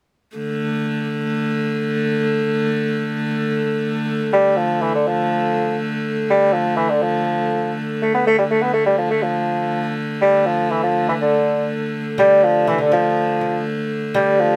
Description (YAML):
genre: medieval dance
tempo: 122 BPM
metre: 2/4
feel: straight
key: D minor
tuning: A4 = 441 Hz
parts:
  - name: clear hurdy-gurdy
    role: drone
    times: 0.4-14.6 s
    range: D3 to A3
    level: -24 LUFS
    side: equal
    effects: none
  - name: warm bassoon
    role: melody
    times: 4.3-14.6 s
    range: D3 to B3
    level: -19 LUFS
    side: equal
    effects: none
  - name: lute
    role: second line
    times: 12.2-14.6 s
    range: D3 to G3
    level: -22 LUFS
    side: equal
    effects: none
room: light reverb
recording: close, detailed microphones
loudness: -19 LUFS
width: mono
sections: 0.4-4.3 A section; 4.3-12.2 B section; 12.2-14.6 B section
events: none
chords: none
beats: | 0.39 0.88 | 1.37 1.86 | 2.35 2.85 | 3.34 3.83 | 4.32 4.81 | 5.30 5.79 | 6.29 6.78 | 7.27 7.76 | 8.25 8.74 | 9.23 9.73 | 10.22 10.71 | 11.20 11.69 | 12.18 12.67 | 13.16 13.65 | 14.15